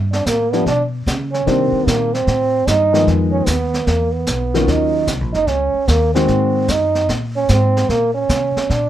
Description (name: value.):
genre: jazz, small-group swing and bop.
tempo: 149 BPM.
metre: 4/4.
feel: swing 67% on 8ths.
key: unclear.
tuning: A4 = 439 Hz.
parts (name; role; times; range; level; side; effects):
upright bass; bass; 0.0-8.9 s; Gb1 to Db3; -20 LUFS; equal; none.
trombone with cup mute; second line; 0.1-8.9 s; Bb3 to Eb4; -17 LUFS; right 3 dB; none.
jazz brush drum kit; drums; 0.1-8.9 s; brushed snare drum, hi-hat, kick drum, snare drum; -23 LUFS; equal; none.
dark upright piano; accompaniment; 0.5-6.7 s; Eb3 to Gb4; -18 LUFS; left 4 dB; none.
room: little or no reverb.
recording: close, detailed microphones.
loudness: -14 LUFS.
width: side -12 dB against mid.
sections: 0.0-8.9 A section.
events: trombone solo 0.0-8.9.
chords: 0.0 G; 1.5 Cm7; 3.1 Fm7b5; 3.9 E5; 4.7 Ebm7; 6.3 Ab9; 7.9 Bbsus2.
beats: 0.26 0.66 1.06 | 1.46 1.86 2.27 2.67 | 3.07 3.47 3.87 4.27 | 4.67 5.08 5.48 5.88 | 6.28 6.68 7.08 7.49 | 7.89 8.29 8.69.